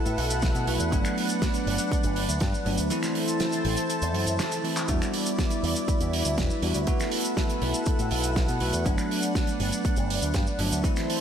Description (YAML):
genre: nu-disco, nu disco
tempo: 121 BPM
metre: 4/4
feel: straight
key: unclear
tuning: A4 = 439 Hz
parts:
  - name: bell-like tine electric piano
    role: accompaniment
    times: 0.0-11.2 s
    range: E3 to F#4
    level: -30 LUFS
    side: equal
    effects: wide subtle chorus, sidechain pumping, diffuse ambient delay
  - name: lush unison pad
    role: sustained chords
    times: 0.0-11.2 s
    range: D4 to A5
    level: -30 LUFS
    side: equal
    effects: chorus, sidechain pumping
  - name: picked electric bass with an envelope filter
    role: bass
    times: 0.1-10.8 s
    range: E1 to B2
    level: -29 LUFS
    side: equal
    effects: none
  - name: damped 70s drum kit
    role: drums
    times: 0.1-11.2 s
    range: cabasa, finger snaps, handclaps, hi-hat, snare drum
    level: -31 LUFS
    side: right 2 dB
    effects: small room ambience
  - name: electronic kick drum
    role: drums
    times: 0.4-10.9 s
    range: none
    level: -27 LUFS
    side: equal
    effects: small room ambience
room: moderate lush hall reverb, RT60 1.8 s, studio reverb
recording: dreamy mix soaked in reverb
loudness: -24 LUFS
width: side -8 dB against mid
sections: 0.0-11.2 A section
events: kick drops out 2.9-4.9; drum fill 4.4-4.9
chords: 0.0 B7sus4; 0.9 Gmaj7; 2.9 Am; 4.9 Em7; 6.9 B7sus4; 8.9 Gmaj7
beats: 0.43 | 0.92 1.42 1.92 2.41 | 2.91 3.40 3.90 4.39 | 4.89 5.39 5.88 6.38 | 6.87 7.37 7.87 8.36 | 8.86 9.35 9.85 10.35 | 10.84